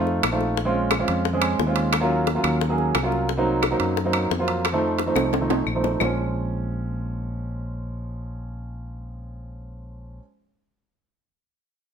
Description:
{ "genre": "Afro-Cuban jazz", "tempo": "177 BPM", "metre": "4/4", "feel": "straight", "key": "Bb minor", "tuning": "A4 = 439 Hz", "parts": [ { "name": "warm grand piano", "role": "accompaniment", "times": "0.0-10.2 s", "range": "F3 to Ab4", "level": "-24 LUFS", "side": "right 2 dB", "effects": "none" }, { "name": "fingered electric bass", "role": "bass", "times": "0.0-10.2 s", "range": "Bb1 to Gb2", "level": "-27 LUFS", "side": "left 1 dB", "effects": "none" }, { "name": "bongos", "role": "percussion", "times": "0.1-6.1 s", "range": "none", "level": "-29 LUFS", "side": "left 10 dB", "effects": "none" }, { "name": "claves", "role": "percussion", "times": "0.2-6.1 s", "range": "none", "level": "-31 LUFS", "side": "left 5 dB", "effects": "none" }, { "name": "timbales", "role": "percussion", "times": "0.2-6.1 s", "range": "none", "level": "-28 LUFS", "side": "right 7 dB", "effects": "none" } ], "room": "light reverb", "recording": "minimal, uncompressed stereo recording", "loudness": "-21 LUFS", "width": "side -7 dB against mid", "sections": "0.0-6.0 A section; 6.0-8.7 B section", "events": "drum fill 5.2-6.0", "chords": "0.0 F7; 0.6 Bbm7; 1.9 Ebm7; 3.3 Cm7b5; 4.6 F7; 6.0 Bbm7" }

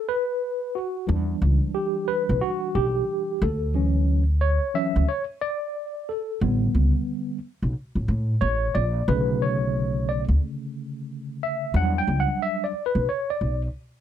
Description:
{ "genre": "hip hop, jazz-hop", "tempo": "90 BPM", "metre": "4/4", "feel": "swing 63% on 16ths", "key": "unclear", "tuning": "A4 = 440 Hz", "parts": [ { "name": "tine electric piano", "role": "accompaniment", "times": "0.0-13.6 s", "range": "C#3 to G5", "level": "-25 LUFS", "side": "equal", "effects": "overdrive, fast stereo tremolo" }, { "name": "upright bass", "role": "bass", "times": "1.1-13.7 s", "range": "A1 to A2", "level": "-22 LUFS", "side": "equal", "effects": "none" } ], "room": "light reverb", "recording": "none", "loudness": "-22 LUFS", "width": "side -10 dB against mid", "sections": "0.0-14.0 A section", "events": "tine electric piano solo 0.0-14.0", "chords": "0.0 B5; 1.1 Em7; 3.4 Dmaj9; 6.4 A7sus4; 9.1 Bm9; 11.7 Em9" }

